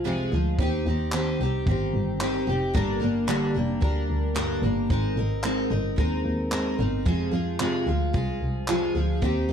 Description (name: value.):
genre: acoustic pop.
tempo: 111 BPM.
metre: 4/4.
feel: straight.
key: unclear.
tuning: A4 = 439 Hz.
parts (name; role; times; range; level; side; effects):
picked steel-string acoustic guitar; accompaniment; 0.0-9.5 s; F2 to Bb4; -26 LUFS; equal; double-tracked left and right.
muted double bass; bass; 0.0-9.5 s; F1 to F2; -27 LUFS; equal; none.
compact cocktail drum kit; drums; 0.6-9.3 s; handclaps, kick drum; -28 LUFS; equal; none.
room: small room ambience.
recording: dry, close 1970s-style studio recording.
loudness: -23 LUFS.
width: side -8 dB against mid.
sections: 0.0-9.5 A section.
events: none.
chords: 0.0 Fm; 0.6 Cm; 2.7 Gm; 4.9 Abadd9; 7.1 Fm.